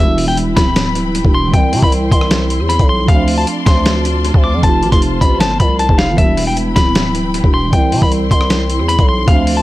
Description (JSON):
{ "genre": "hip hop, trap", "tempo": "155 BPM", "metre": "4/4", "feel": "half-time", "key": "E phrygian", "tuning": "A4 = 440 Hz", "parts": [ { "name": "clean electric guitar", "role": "melody", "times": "0.0-9.6 s", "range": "E5 to D6", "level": "-18 LUFS", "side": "left 2 dB", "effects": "analog delay" }, { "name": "warbly lo-fi synth keys", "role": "accompaniment", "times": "0.0-9.6 s", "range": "E3 to F4", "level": "-20 LUFS", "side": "right 3 dB", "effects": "chorus, analog delay" }, { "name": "dark symphonic string section", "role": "sustained chords", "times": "0.0-9.6 s", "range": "E4 to C6", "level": "-24 LUFS", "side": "left 3 dB", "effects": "none" }, { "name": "growling 808-style bass", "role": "bass", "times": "0.0-9.6 s", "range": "D1 to C3", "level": "-16 LUFS", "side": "equal", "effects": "none" }, { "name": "dusty soul sampler-style drum kit", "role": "drums", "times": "0.2-9.6 s", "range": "hi-hat, kick drum, rim click, snare drum", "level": "-14 LUFS", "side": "equal", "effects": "none" } ], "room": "digital ambience", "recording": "echo-heavy mix, vinyl crackle", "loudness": "-11 LUFS", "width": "side -16 dB against mid", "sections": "0.0-9.6 A section", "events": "none", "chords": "0.0 Em; 1.5 C; 3.1 Dm7; 4.6 F; 6.2 Em; 7.7 C" }